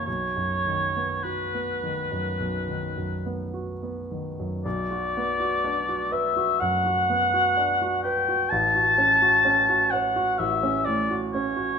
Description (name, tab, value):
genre	classical, romantic duo for oboe and grand piano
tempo	50-65 BPM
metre	4/4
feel	rubato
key	B major, B minor from 4.7 s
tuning	A4 = 436 Hz
part	mellow oboe	melody	0.0-11.8 s	B4 to A5	-22 LUFS	left 2 dB	none
part	warm concert grand piano	accompaniment	0.0-11.8 s	A1 to C#5	-28 LUFS	right 2 dB	none
room	wet stone room reverb, RT60 0.9 s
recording	none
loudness	-21 LUFS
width	side -6 dB against mid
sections	0.0-4.7 A section; 4.7-11.8 B section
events	none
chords	0.1 B; 4.7 Bm; 8.5 F#m/A